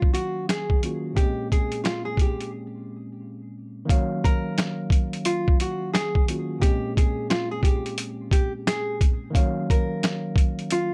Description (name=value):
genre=hip hop, boom-bap hip-hop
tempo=88 BPM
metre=4/4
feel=swing 62% on 16ths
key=Eb dorian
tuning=A4 = 440 Hz
part: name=nylon-string guitar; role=melody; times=0.0-10.9 s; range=F4 to Bb4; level=-31 LUFS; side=equal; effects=high-pass filter, low-pass filter, plate reverb
part: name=tine electric piano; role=accompaniment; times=0.0-10.9 s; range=Bb2 to F5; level=-33 LUFS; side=equal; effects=cassette tape, high-pass filter, low-pass filter, plate reverb
part: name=boom bap sampler-style drum kit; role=drums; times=0.0-10.9 s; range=hi-hat, kick drum, snare drum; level=-24 LUFS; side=equal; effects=none
room=light reverb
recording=none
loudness=-24 LUFS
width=mono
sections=0.0-3.9 A section; 3.9-10.9 B section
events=break 2.5-3.9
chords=0.0 Ebm9; 1.2 Bbm9; 3.9 Ebm9; 6.6 Bbm9; 9.4 Ebm9